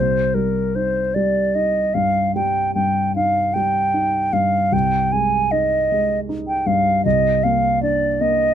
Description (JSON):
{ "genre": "classical, impressionist duo for flute and grand piano", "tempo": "51 BPM (dotted quarters)", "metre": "12/8", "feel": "rubato", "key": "C minor", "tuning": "A4 = 439 Hz", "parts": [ { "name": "concert flute", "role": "melody", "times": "0.0-8.5 s", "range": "Bb4 to Ab5", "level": "-18 LUFS", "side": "right 1 dB", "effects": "none" }, { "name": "warm concert grand piano", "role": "accompaniment", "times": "0.0-8.5 s", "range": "C2 to Eb4", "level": "-21 LUFS", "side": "left 1 dB", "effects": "none" } ], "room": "little or no reverb", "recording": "close, detailed microphones", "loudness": "-16 LUFS", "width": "side -10 dB against mid", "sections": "0.0-8.5 A section", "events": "none", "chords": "0.0 Cm; 4.7 Abmaj7/C; 7.0 Cm9" }